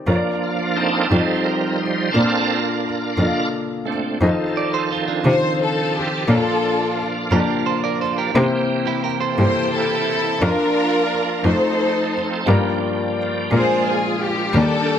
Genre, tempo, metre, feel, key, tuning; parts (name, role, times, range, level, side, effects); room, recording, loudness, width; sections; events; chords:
gospel; 58 BPM (dotted quarters); 6/8; straight; Bb major; A4 = 440 Hz
warm upright piano; accompaniment; 0.0-15.0 s; G2 to A5; -22 LUFS; left 3 dB
bright tonewheel organ; sustained chords; 0.1-15.0 s; Eb3 to D5; -23 LUFS; right 4 dB; slow rotary speaker, chorus vibrato
rich cello; bass; 0.1-14.6 s; Eb2 to C3; -18 LUFS; equal
clean electric guitar; second line; 4.6-10.2 s; D4 to D5; -25 LUFS; right 8 dB; spring reverb
warm studio string section; melody; 5.3-15.0 s; D4 to C5; -20 LUFS; left 1 dB; tape echo
moderate echo chamber reverb, RT60 1.8 s, small room ambience; -17 LUFS; side -9 dB against mid
0.0-4.2 A section; 4.2-15.0 B section
tonewheel organ solo 0.0-4.2
0.1 Bb/F; 1.1 F7; 2.2 Bbmaj7; 4.2 F7; 6.3 Bbmaj7; 8.4 C7; 10.4 Bb/F; 11.5 F7; 12.5 Gm7; 13.5 Bb7